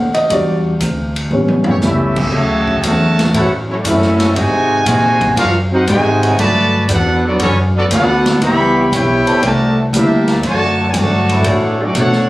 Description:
jazz, big band swing; 118 BPM; 4/4; swing 69% on 8ths; D major; A4 = 441 Hz
warm concert grand piano; accompaniment; 0.0-2.3 s; G3 to F#5; -16 LUFS; equal
upright bass; bass; 0.0-12.3 s; A1 to B2; -17 LUFS; equal
swinging big-band drum kit; drums; 0.1-12.3 s; crash cymbal, hi-hat, kick drum, ride cymbal, snare drum, toms; -21 LUFS; equal
mellow trumpet section; melody; 1.7-12.3 s; A3 to B5; -16 LUFS; equal; plate reverb
clear trombone section; second line; 1.7-12.3 s; B#2 to G4; -16 LUFS; equal
muted trombone section; sustained chords; 1.8-11.9 s; C#3 to A4; -22 LUFS; equal
moderate club ambience, RT60 0.5 s; recorded on a phone in the room, club reverb, compression; -11 LUFS; side -18 dB against mid
0.0-2.3 A section; 2.3-12.3 B section
grand piano solo 0.0-2.3; drum fill 1.3-1.8
0.3 Em7; 1.3 A7; 2.3 Dmaj9; 4.4 G#9; 6.4 Gmaj9#11; 8.4 C#m7b5; 9.4 C9; 10.4 Bm9
| 0.30 0.81 1.31 1.82 | 2.33 2.83 3.34 3.85 | 4.36 4.86 5.37 5.88 | 6.38 6.89 7.40 7.90 | 8.41 8.92 9.42 9.93 | 10.44 10.94 11.45 11.96

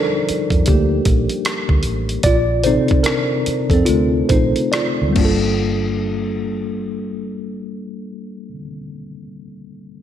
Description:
R&B, neo-soul; 67-78 BPM; 4/4; swing 63% on 16ths; G minor; A4 = 436 Hz
mellow tine electric piano; accompaniment; 0.0-10.0 s; C3 to D5; -19 LUFS; left 1 dB; medium stereo tremolo
vintage muted fingered electric bass; bass; 0.3-8.6 s; G1 to F2; -21 LUFS; right 1 dB
boom bap sampler-style drum kit; drums; 0.3-5.4 s; crash cymbal, hi-hat, kick drum, rim click; -20 LUFS; right 1 dB
moderate lush hall reverb, RT60 2.1 s; dreamy mix soaked in reverb; -15 LUFS; side -10 dB against mid
0.0-5.6 A section; 5.6-9.2 B section
slowing down 0.0-5.6; tine electric piano solo 0.0-5.6
0.0 Ebmaj9; 2.2 Bbmaj9; 5.2 Gm9
0.67 1.45 | 2.24 3.05 3.87 4.72 | 5.60 6.50 7.39 8.28

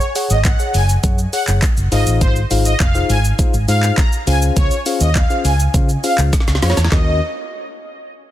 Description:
dance-pop; 102 BPM; 4/4; straight; Eb dorian; A4 = 440 Hz
soft supersaw; melody; 0.0-7.2 s; C5 to Bb5; -22 LUFS; equal; phaser, sidechain pumping, dub echo
mellow tine electric piano; accompaniment; 0.0-7.2 s; Db4 to Gb5; -23 LUFS; left 4 dB; sidechain pumping
smooth R&B drum kit; drums; 0.0-7.1 s; handclaps, hi-hat, kick drum, shaker, snare drum; -18 LUFS; equal
vintage muted fingered electric bass; bass; 0.3-7.2 s; F1 to Db3; -16 LUFS; equal; sidechain pumping
little or no reverb; dense, heavily limited modern master; -13 LUFS; side -13 dB against mid
0.0-6.9 A section; 6.9-8.3 B section
drop 0.0-6.9; drum fill 6.3-6.9
0.0 Gbsus2; 1.9 Ab6; 4.3 Dbmaj7; 6.9 Ebm7
0.45 1.04 1.62 | 2.21 2.80 3.39 3.98 | 4.57 5.15 5.74 6.33 | 6.92

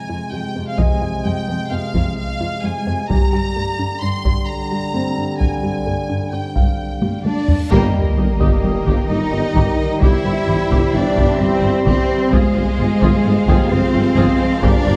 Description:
cinematic, hybrid orchestral and electronic film score; 130 BPM; 5/4; straight; A4 = 438 Hz
rich symphonic violin section; melody; 0.0-15.0 s; Ab4 to C6; -30 LUFS; equal
clear trombone section; sustained chords; 0.0-15.0 s; C3 to Bb3; -27 LUFS; equal
felt-muted upright piano; texture; 0.0-15.0 s; G3 to Eb6; -32 LUFS; equal; tape echo
resonant blip pluck; arpeggios; 0.1-15.0 s; C3 to G4; -29 LUFS; equal
rich symphonic cello section; bass; 0.1-15.0 s; F2 to E4; -24 LUFS; equal
taiko ensemble; drums; 0.8-15.0 s; -22 LUFS; equal
reverse cymbal and sub drop; sound effects; 7.7-10.0 s; -24 LUFS; equal
rich chamber violin section; second line; 7.7-15.0 s; Bb4 to F5; -31 LUFS; equal
warm studio viola section; accompaniment; 7.7-14.9 s; Eb4 to Ab4; -30 LUFS; equal
dark French horn section; sustained chords; 7.7-15.0 s; F4 to C5; -28 LUFS; equal
warm symphonic double bass section; bass; 7.7-14.9 s; G1; -24 LUFS; equal
warm tuba; bass; 7.7-15.0 s; G1; -26 LUFS; equal
moderate scoring stage reverb, RT60 1.8 s; dark, warm production; -17 LUFS; mono
0.0-7.7 A section; 7.7-15.0 B section
drum fill 7.0-7.7; reverse cymbal 7.7; band accent 7.7-8.2; impact 7.7-10.0
0.0 Fm; 3.1 Gm; 7.7 Eb/G; 10.0 C/G; 12.3 Fm/G
0.33 | 0.79 1.25 1.71 2.17 2.63 | 3.10 3.56 4.02 4.48 4.94 | 5.40 5.87 6.33 6.79 7.25 | 7.71 8.17 8.63 9.10 9.56 | 10.02 10.48 10.94 11.40 11.87 | 12.33 12.79 13.25 13.71 14.17 | 14.63

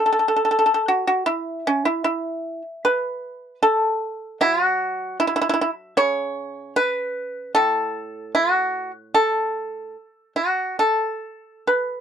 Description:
chinese traditional, Chinese solo plucked strings; 76 BPM; 4/4; rubato; A gong mode; A4 = 441 Hz
pipa; solo; 0.0-12.0 s; A2 to C#5; -19 LUFS; equal
light reverb; dry, close 1970s-style studio recording; -20 LUFS; side -8 dB against mid
0.0-12.0 A section
0.50 1.30 2.09 | 2.87 3.64 4.42 5.21 | 5.99 6.78 7.57 8.36 | 9.15 9.95 10.79 11.66

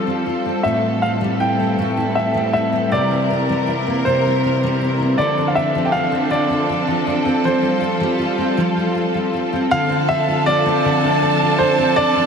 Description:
six-eight pop ballad; 53 BPM (dotted quarters); 6/8; straight; D minor; A4 = 441 Hz
clear baby grand piano; melody; 0.0-12.3 s; A4 to G5; -20 LUFS; equal; analog delay
fingerpicked steel-string acoustic guitar; accompaniment; 0.0-12.3 s; A2 to Bb4; -20 LUFS; equal; double-tracked left and right
warm studio string section; sustained chords; 0.0-12.3 s; E3 to Bb4; -22 LUFS; left 1 dB
warm studio violin section; second line; 9.7-12.3 s; A5; -22 LUFS; right 4 dB; analog delay
wet huge ambient reverb, RT60 8.1 s; dreamy mix soaked in reverb; -16 LUFS; side -6 dB against mid
0.0-9.7 A section; 9.7-12.3 B section
0.0 Fadd9; 0.6 Am7; 2.9 C7; 5.2 Dm7; 7.4 Fadd9; 9.7 Dm7
| 0.64 1.78 | 2.92 4.05 | 5.18 6.31 | 7.44 8.58 | 9.71 10.84 | 11.96

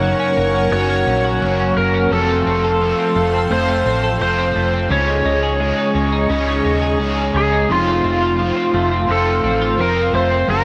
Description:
dream pop; 86 BPM; 4/4; straight; A4 = 441 Hz
overdriven slide guitar; melody; 0.0-10.6 s; F4 to Db5; -21 LUFS; equal; tape echo
crunchy overdriven guitar; accompaniment; 0.0-10.6 s; F2 to A4; -26 LUFS; equal; harmonic tremolo, analog chorus
lush unison pad; sustained chords; 0.0-10.6 s; F4 to Db6; -25 LUFS; equal; chorus, phaser
twelve-string electric guitar; arpeggios; 0.0-10.6 s; F2 to A4; -24 LUFS; equal; analog chorus, tape echo
hollow-body short-scale fingered electric bass; bass; 0.0-10.6 s; F1 to Eb2; -24 LUFS; equal
vibraphone with medium mallets; texture; 0.0-9.8 s; Eb4 to Ab4; -32 LUFS; equal; tape echo
moderate lush hall reverb, RT60 2.0 s; -17 LUFS; mono
0.0-7.7 A section; 7.7-10.6 A section
0.0 Gb; 2.1 F; 4.9 Dbsus2; 7.7 F
0.02 0.72 1.41 | 2.11 2.81 3.51 4.21 | 4.90 5.60 6.30 7.00 | 7.69 8.39 9.09 9.79 | 10.48

